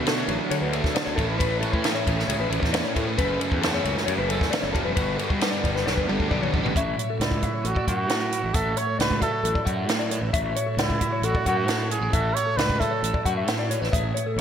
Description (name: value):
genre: math rock and midwest emo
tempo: 134 BPM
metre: 4/4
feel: straight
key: unclear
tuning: A4 = 444 Hz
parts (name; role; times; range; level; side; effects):
- twelve-string electric guitar; accompaniment; 0.0-14.4 s; E2 to A4; -30 LUFS; right 3 dB; ensemble chorus
- mellow electric guitar; arpeggios; 0.0-14.4 s; A4 to F#5; -29 LUFS; left 5 dB; analog chorus
- biting overdriven guitar; riff; 0.0-6.8 s; F#2 to E4; -28 LUFS; right 1 dB; none
- fuzz fingered electric bass; bass; 0.0-14.4 s; E1 to D3; -29 LUFS; equal; overdrive
- compact cocktail drum kit; drums; 0.1-14.4 s; hi-hat, kick drum, ride cymbal, snare drum, toms; -27 LUFS; equal; gated reverb
- warm trumpet; melody; 7.2-14.4 s; E4 to C#5; -27 LUFS; right 3 dB; ping-pong delay
room: moderate lush hall reverb, RT60 1.8 s, studio ambience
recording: bright 1980s-style digital production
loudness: -22 LUFS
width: side -8 dB against mid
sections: 0.0-6.8 A section; 6.8-14.4 B section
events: drum fill 5.9-6.8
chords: 0.0 Dmaj7; 1.2 Amaj9; 3.2 F#m7; 5.0 Gmaj7; 6.8 Dmaj9/A